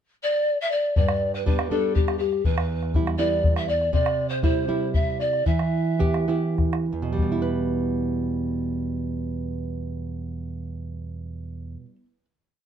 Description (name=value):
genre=andean folk, Andean ensemble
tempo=64-81 BPM (dotted quarters)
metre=6/8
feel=straight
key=E minor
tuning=A4 = 440 Hz
part: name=mellow hollow pan flute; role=melody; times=0.2-6.6 s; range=G4 to E5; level=-25 LUFS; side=left 1 dB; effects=plate reverb
part: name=nylon-string guitar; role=accompaniment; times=1.0-12.2 s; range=E2 to B4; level=-26 LUFS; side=right 3 dB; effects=none
part: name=bombo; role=percussion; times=1.0-7.5 s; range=none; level=-24 LUFS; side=left 2 dB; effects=none
room=light reverb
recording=dark, warm production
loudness=-22 LUFS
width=side -9 dB against mid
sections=0.0-1.0 pickup bar; 1.0-7.2 A section; 7.2-10.9 final chord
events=slowing down 3.9-7.2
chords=0.0 N.C.; 1.0 G; 2.4 Em; 3.9 C; 5.5 Em